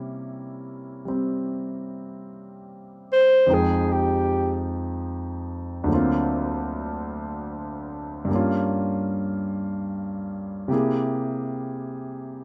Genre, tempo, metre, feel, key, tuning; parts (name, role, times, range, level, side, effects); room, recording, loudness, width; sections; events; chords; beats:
jazz ballad; 50 BPM; 4/4; swing 67% on 8ths; A4 = 440 Hz
warm concert grand piano; accompaniment; 0.0-12.4 s; D2 to G5; -28 LUFS; equal
breathy alto saxophone; melody; 3.1-4.6 s; G4 to C5; -21 LUFS; equal
moderate large studio reverb, RT60 0.8 s; -25 LUFS; mono
0.0-12.4 A section
alto saxophone solo 0.0-12.4
0.0 C7b9; 3.5 Fm9; 5.9 D7alt; 8.3 Gm7b5; 10.7 C7b13
1.05 2.26 | 3.46 4.67 5.87 7.08 | 8.28 9.48 10.69 11.89